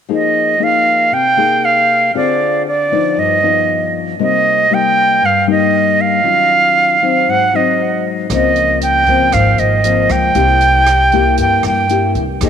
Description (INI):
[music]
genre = bossa nova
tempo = 117 BPM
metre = 4/4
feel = straight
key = F minor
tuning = A4 = 439 Hz
[part]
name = silver concert flute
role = melody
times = 0.1-12.5 s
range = D5 to G5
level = -12 LUFS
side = right 3 dB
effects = tape echo
[part]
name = nylon-string guitar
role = accompaniment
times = 0.1-12.5 s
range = G2 to Ab4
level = -17 LUFS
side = left 10 dB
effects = none
[part]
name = upright bass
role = bass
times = 8.3-12.5 s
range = Ab1 to G2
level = -17 LUFS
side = equal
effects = none
[part]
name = open jazz drum kit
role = drums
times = 8.3-12.5 s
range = hi-hat, kick drum, rim click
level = -24 LUFS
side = right 4 dB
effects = none
[sound]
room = moderate echo chamber reverb, RT60 2.2 s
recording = 1960s-style stereo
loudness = -10 LUFS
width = side -8 dB against mid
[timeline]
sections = 0.1-12.5 A section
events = none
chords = 0.1 Fm11; 2.1 Dm7b5; 3.2 G7b13; 4.2 Cm7; 6.2 Ebm9; 7.3 Ab7; 8.3 Dbmaj13; 10.4 C7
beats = | 0.08 0.60 1.11 1.62 | 2.14 2.65 3.16 3.68 | 4.19 4.71 5.22 5.73 | 6.25 6.76 7.27 7.79 | 8.30 8.81 9.33 9.84 | 10.36 10.87 11.38 11.90 | 12.41